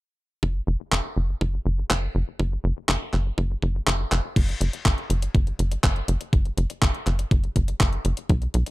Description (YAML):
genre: italo disco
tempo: 122 BPM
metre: 4/4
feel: straight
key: unclear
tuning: A4 = 440 Hz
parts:
  - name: tight sequencer bass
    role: bass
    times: 0.4-8.6 s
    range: F#1 to B1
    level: -24 LUFS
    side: equal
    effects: none
  - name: electronic kick drum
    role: drums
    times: 0.4-8.4 s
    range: none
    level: -21 LUFS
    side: equal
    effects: overdrive, high-pass filter on kick, small room ambience
  - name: clean 12-bit digital drum machine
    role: drums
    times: 0.9-8.7 s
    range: crash cymbal, handclaps, hi-hat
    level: -27 LUFS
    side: equal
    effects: overdrive, small room ambience
room: little or no reverb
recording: dark, warm production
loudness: -22 LUFS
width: side -19 dB against mid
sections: 0.4-4.4 A section; 4.4-8.7 B section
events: drum fill 4.1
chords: none